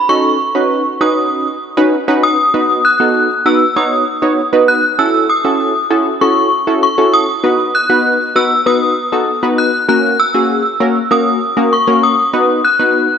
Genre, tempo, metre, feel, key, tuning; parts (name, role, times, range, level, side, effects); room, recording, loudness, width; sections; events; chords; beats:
pop; 98 BPM; 4/4; straight; A4 = 439 Hz
synth chime; melody; 0.0-13.2 s; C#6 to F#6; -13 LUFS; left 1 dB; ensemble chorus, phaser, digital delay
funky polysynth comp; accompaniment; 0.1-13.1 s; A#3 to C#5; -14 LUFS; equal; chorus
moderate lush hall reverb, RT60 2.7 s; dark, warm production; -10 LUFS; side -7 dB against mid
0.0-2.5 A section; 2.5-13.2 B section
0.0 Badd9; 2.5 B; 5.0 F#m7; 7.4 B; 9.9 F#; 12.3 B
| 0.09 0.70 1.31 1.93 | 2.54 3.15 3.76 4.38 | 4.99 5.60 6.21 6.83 | 7.44 8.05 8.66 9.27 | 9.89 10.50 11.11 11.72 | 12.34 12.95